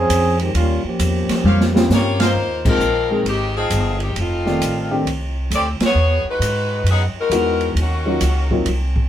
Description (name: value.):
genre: jazz, big band swing.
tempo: 133 BPM.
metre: 4/4.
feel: swing 65% on 8ths.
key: Ab major.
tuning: A4 = 440 Hz.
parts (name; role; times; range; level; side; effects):
clear trombone section; second line; 0.0-2.2 s; Eb3 to Ab4; -19 LUFS; right 1 dB; none.
upright bass; bass; 0.0-9.1 s; F1 to G#2; -20 LUFS; equal; none.
open jazz drum kit; drums; 0.1-9.0 s; crash cymbal, hi-hat, kick drum, ride cymbal, snare drum, toms; -23 LUFS; right 1 dB; none.
clear trumpet section; stabs; 1.5-2.3 s; G4 to F5; -25 LUFS; equal; none.
warm baby grand piano; accompaniment; 1.7-8.7 s; Eb3 to D5; -21 LUFS; left 1 dB; none.
clear saxophone section; melody; 1.9-8.7 s; Eb3 to D5; -20 LUFS; left 2 dB; none.
room: moderate studio ambience, RT60 0.5 s.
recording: band playing live in one room.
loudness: -16 LUFS.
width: side -11 dB against mid.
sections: 0.0-2.4 A section; 2.4-9.1 B section.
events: trombone section solo 0.0-2.4; drum fill 1.5-2.4; band accent 2.1, 2.6, 5.7.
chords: 0.0 Bbm9 (rootless); 0.6 Eb13; 2.4 Ab69; 4.2 F13; 6.0 Emaj9; 7.8 Ebm7.